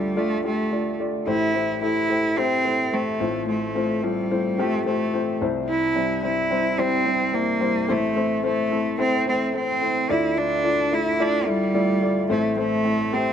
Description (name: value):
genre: pop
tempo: 109 BPM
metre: 4/4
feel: swing 56% on 16ths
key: D minor from 10.1 s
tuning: A4 = 437 Hz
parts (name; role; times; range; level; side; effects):
- clear cello; melody; 0.0-13.3 s; G3 to E4; -23 LUFS; right 2 dB; tape echo
- dark upright piano; accompaniment; 0.0-13.3 s; A1 to E5; -23 LUFS; left 2 dB; tape echo
room: light reverb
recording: echo-heavy mix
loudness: -20 LUFS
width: side -8 dB against mid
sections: 0.0-10.1 A section; 10.1-13.3 B section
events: none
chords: 0.0 Dm; 1.3 Am7; 3.2 F/A; 5.4 C; 7.9 Am; 10.1 Dmadd9; 12.3 Am